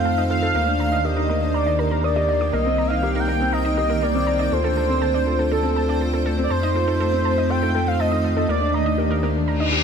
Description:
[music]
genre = piano and strings electronica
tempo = 121 BPM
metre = 4/4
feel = straight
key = unclear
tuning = A4 = 440 Hz
[part]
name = warm velvety synth lead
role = melody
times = 0.0-9.2 s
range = A4 to G5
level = -23 LUFS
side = right 1 dB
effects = chorus
[part]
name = granular cloud pad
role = sustained chords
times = 0.0-9.8 s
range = Eb3 to G5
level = -27 LUFS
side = right 1 dB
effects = built-in reverb
[part]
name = felt-muted upright piano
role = riff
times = 0.0-9.8 s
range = A3 to Bb4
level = -25 LUFS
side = left 1 dB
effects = ping-pong delay
[part]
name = round analog bass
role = bass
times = 0.0-9.8 s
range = C2 to F2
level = -24 LUFS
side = equal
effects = none
[part]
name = warbly dusty pluck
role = arpeggios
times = 0.1-9.8 s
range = A4 to Eb6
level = -31 LUFS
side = right 4 dB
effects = chorus, ping-pong delay
[part]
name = reverse cymbal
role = sound effects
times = 9.6-9.8 s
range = none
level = -20 LUFS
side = left 4 dB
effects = none
[sound]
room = moderate lush hall reverb, RT60 2.7 s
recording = none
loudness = -18 LUFS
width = side -7 dB against mid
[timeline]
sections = 0.0-9.8 A section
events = reverse cymbal 9.6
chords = 0.0 F7; 0.6 Ebmaj7; 2.5 Cm7; 4.5 Dm7; 6.5 F7; 8.5 Ebmaj7

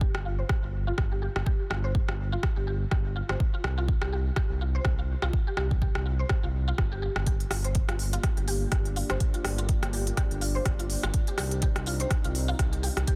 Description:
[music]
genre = afro house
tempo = 124 BPM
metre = 4/4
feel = swing 56% on 16ths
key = G minor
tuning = A4 = 440 Hz
[part]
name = mallet-like synth pluck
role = arpeggios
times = 0.0-13.2 s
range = F4 to C5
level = -39 LUFS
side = equal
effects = ensemble chorus, sidechain pumping, dub echo
[part]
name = smooth synth bass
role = bass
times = 0.0-13.0 s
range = G1 to C2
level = -32 LUFS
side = equal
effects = sidechain pumping
[part]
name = electronic kick drum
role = drums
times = 0.0-13.2 s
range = none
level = -29 LUFS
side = equal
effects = none
[part]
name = afro-pop drum kit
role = drums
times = 0.1-13.2 s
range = hi-hat, rim click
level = -37 LUFS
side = equal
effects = soft clipping on snare
[part]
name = dark analog pad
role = sustained chords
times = 8.0-13.2 s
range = Bb3 to D5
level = -41 LUFS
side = equal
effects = chorus, sidechain pumping
[sound]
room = little or no reverb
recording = dense, heavily limited modern master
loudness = -28 LUFS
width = mono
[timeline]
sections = 0.0-13.2 A section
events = filter sweep on synth arpeggio sound 0.0-13.2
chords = 0.0 G7sus4; 7.3 Gm7; 11.1 Cmadd9

